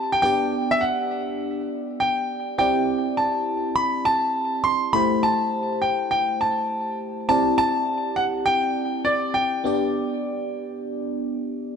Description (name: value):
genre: R&B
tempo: 102 BPM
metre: 4/4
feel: swing 66% on 16ths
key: G major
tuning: A4 = 440 Hz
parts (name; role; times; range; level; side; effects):
- bright concert grand piano; melody; 0.0-11.4 s; D5 to C6; -22 LUFS; equal; ping-pong delay
- FM electric piano; accompaniment; 0.0-11.8 s; A3 to D5; -26 LUFS; equal; chorus, phaser
room: wet plate reverb, RT60 3.3 s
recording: dark, warm production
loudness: -21 LUFS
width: side -6 dB against mid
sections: 0.0-11.8 A section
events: none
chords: 0.2 Gmaj7; 2.6 D9sus4; 4.9 C6; 7.3 D9sus4; 9.6 G